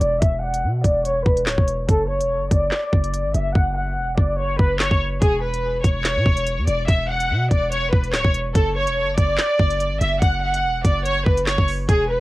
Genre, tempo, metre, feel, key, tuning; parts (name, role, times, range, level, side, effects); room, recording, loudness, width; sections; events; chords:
hip hop, drill; 144 BPM; 4/4; half-time; A4 = 440 Hz
warm studio violin section; melody; 0.0-12.2 s; G#4 to F#5; -21 LUFS; equal; low-pass filter, cassette tape, analog delay
hard-hitting 808-style bass; bass; 0.0-12.2 s; D1 to B2; -23 LUFS; equal
drill drum kit; drums; 0.0-12.0 s; handclaps, hi-hat, kick drum, snare drum; -19 LUFS; equal; cassette tape
little or no reverb; home recording on cassette; -18 LUFS; side -18 dB against mid
0.0-12.2 A section
filter sweep on violin section 0.0-5.2; hi-hats muted 3.6-5.2
0.0 Esus2; 1.9 F#5; 5.2 N.C.; 8.6 F#5